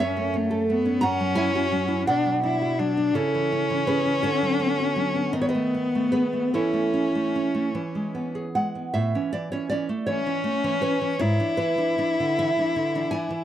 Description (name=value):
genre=romantic duo for cello and classical guitar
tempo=49-59 BPM (dotted quarters)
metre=6/8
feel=rubato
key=A major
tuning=A4 = 443 Hz
part: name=rich cello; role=melody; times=0.0-13.4 s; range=A3 to E4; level=-24 LUFS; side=left 2 dB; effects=none
part: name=nylon-string guitar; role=accompaniment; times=0.0-13.4 s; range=F#2 to Bb5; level=-25 LUFS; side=right 2 dB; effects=none
room=little or no reverb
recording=dry, close 1970s-style studio recording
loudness=-22 LUFS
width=side -11 dB against mid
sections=0.0-9.0 A section; 9.0-13.4 B section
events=none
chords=0.0 F#m; 1.0 F#5; 2.1 Bm; 3.2 A/C#; 4.3 Bm/D; 5.4 B7/D#; 6.5 A/E; 7.8 E; 9.0 A; 11.2 E7/G#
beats=| 0.02 1.05 | 2.10 3.17 | 4.26 5.36 | 6.55 7.76 | 8.95 10.08 | 11.19 12.38